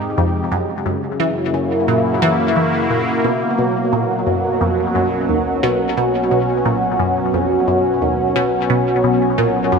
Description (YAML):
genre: ambient, sequencer-driven space music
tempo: 88 BPM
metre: 4/4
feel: straight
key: unclear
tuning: A4 = 439 Hz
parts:
  - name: sweeping resonant pad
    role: sustained chords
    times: 0.0-9.8 s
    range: B2 to G4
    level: -17 LUFS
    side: equal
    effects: chorus
  - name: resonant blip pluck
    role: riff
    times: 0.0-9.8 s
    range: Eb2 to Fb3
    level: -19 LUFS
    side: equal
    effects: phaser, analog chorus, ping-pong delay
  - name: analog drone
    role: bass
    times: 0.0-9.8 s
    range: B1 to Gb2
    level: -33 LUFS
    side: left 1 dB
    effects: chorus
room: wet plate reverb, RT60 2.9 s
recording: dreamy mix soaked in reverb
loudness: -15 LUFS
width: side -5 dB against mid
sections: 0.0-3.2 A section; 3.2-9.8 B section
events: none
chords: 0.0 Fmadd9; 0.5 Gb7; 3.2 Bsus2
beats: | 0.52 1.20 1.88 2.56 | 3.24 3.93 4.61 5.29 | 5.97 6.65 7.33 8.02 | 8.70 9.38